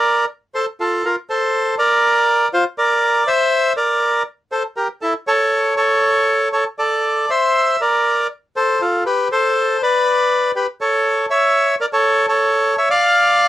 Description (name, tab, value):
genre	tango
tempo	120 BPM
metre	4/4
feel	rubato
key	unclear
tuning	A4 = 441 Hz
part	bandoneon	solo	0.0-13.5 s	E4 to F5	-14 LUFS	equal	none
room	light reverb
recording	dry, close 1970s-style studio recording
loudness	-14 LUFS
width	side -13 dB against mid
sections	0.0-13.5 A section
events	none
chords	0.0 Dm7; 3.0 Gm (rootless); 5.0 A; 7.0 Dm; 9.0 Gadd9; 11.0 A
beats	0.04 0.54 | 1.03 1.53 2.02 2.52 | 3.01 3.51 4.01 4.51 | 5.01 5.51 6.02 6.52 | 7.03 7.54 8.04 8.54 | 9.04 9.54 10.04 10.54 | 11.03 11.53 12.02 12.52 | 13.02